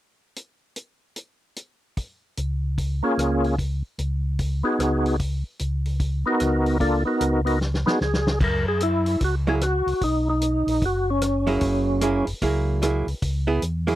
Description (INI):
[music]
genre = soul jazz organ trio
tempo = 149 BPM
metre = 4/4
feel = swing 64% on 8ths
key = F# mixolydian from 8.4 s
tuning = A4 = 441 Hz
[part]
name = warm soul drum kit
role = drums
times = 0.4-13.9 s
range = crash cymbal, hi-hat, kick drum, rim click, snare drum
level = -28 LUFS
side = equal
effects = none
[part]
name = mellow tonewheel organ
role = bass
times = 2.4-14.0 s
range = F#1 to F#2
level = -24 LUFS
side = equal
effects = chorus vibrato, slow rotary speaker
[part]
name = percussive tonewheel organ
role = melody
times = 3.0-12.3 s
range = A#3 to A#4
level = -22 LUFS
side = equal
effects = slow rotary speaker, overdrive, chorus vibrato
[part]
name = archtop guitar, miked and amplified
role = accompaniment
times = 9.5-14.0 s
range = F#3 to G#4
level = -24 LUFS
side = right 3 dB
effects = none
[sound]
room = light reverb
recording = dry, close 1970s-style studio recording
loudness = -21 LUFS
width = side -14 dB against mid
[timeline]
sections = 0.4-2.0 A section; 2.0-8.4 B section; 8.4-14.0 C section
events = drum fill 7.6-8.4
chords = 0.4 N.C.; 2.0 C#6; 8.4 F#9; 10.0 Badd9; 11.6 F#9; 13.2 C#m7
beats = | 0.37 0.77 1.17 1.57 | 1.97 2.38 2.78 3.18 | 3.58 3.98 4.39 4.79 | 5.19 5.59 5.99 6.39 | 6.80 7.20 7.60 8.00 | 8.40 8.80 9.21 9.61 | 10.01 10.41 10.81 11.21 | 11.62 12.02 12.42 12.82 | 13.22 13.62